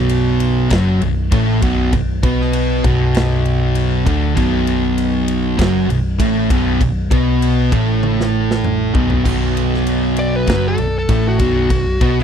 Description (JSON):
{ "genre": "stoner and doom metal", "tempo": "98 BPM", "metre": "4/4", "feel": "straight", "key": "B minor", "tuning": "A4 = 442 Hz", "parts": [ { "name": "biting overdriven guitar", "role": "riff", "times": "0.0-12.2 s", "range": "B1 to B3", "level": "-22 LUFS", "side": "equal", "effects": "none" }, { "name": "thick fuzz guitar", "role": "riff", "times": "0.0-12.2 s", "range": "B1 to B3", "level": "-21 LUFS", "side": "left 11 dB", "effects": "distortion" }, { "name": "thick fuzz guitar", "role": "riff", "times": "0.0-12.2 s", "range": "B1 to B3", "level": "-20 LUFS", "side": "right 8 dB", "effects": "distortion" }, { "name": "hollow-body short-scale picked electric bass", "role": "bass", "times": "0.0-12.2 s", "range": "B0 to B1", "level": "-19 LUFS", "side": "equal", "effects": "tube saturation" }, { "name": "big rock drum kit", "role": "drums", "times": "0.1-12.2 s", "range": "crash cymbal, kick drum, ride cymbal, snare drum, toms", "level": "-21 LUFS", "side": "equal", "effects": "none" }, { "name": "fuzz lead guitar", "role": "melody", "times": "10.2-12.2 s", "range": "F#4 to D5", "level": "-20 LUFS", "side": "left 1 dB", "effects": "distortion" } ], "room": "little or no reverb", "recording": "dry, close 1970s-style studio recording", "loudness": "-14 LUFS", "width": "side -8 dB against mid", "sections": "0.0-9.3 A section; 9.3-12.2 B section", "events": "drum fill 8.0-9.3; lead electric guitar solo 9.3-12.2", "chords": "0.0 Bm; 9.3 B5" }